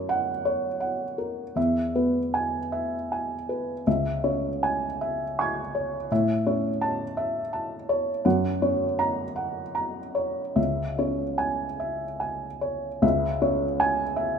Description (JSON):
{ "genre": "neoclassical minimalist piano", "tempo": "71-85 BPM", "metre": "3/4", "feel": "rubato", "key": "C# minor", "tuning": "A4 = 442 Hz", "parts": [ { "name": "felt-muted upright piano", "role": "solo", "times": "0.0-14.4 s", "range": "C#2 to G#6", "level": "-24 LUFS", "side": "equal", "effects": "none" } ], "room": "moderate recital hall reverb, RT60 1.4 s", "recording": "minimal, uncompressed stereo recording", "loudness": "-24 LUFS", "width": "side -6 dB against mid", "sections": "0.0-13.0 A section; 13.0-14.4 B section", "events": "none", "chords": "0.0 F#; 1.6 E; 3.9 C#m; 6.1 A; 8.2 F#; 10.6 C#m", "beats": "0.07 0.81 | 1.57 2.34 3.10 | 3.86 4.62 5.38 | 6.10 6.81 7.53 | 8.25 8.99 9.75 | 10.57 11.40 12.21 | 13.03 13.80" }